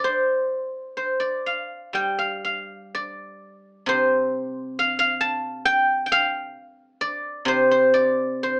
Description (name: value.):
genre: chinese traditional, Chinese solo plucked strings.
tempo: 61-69 BPM.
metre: 2/4.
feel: rubato.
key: C zhi mode.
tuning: A4 = 440 Hz.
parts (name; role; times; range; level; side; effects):
guzheng; solo; 0.0-8.6 s; C3 to A5; -20 LUFS; equal; none.
room: light reverb.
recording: band playing live in one room, AM radio sound.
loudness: -20 LUFS.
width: side -33 dB against mid.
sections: 0.0-1.9 A section; 1.9-8.6 B section.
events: none.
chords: none.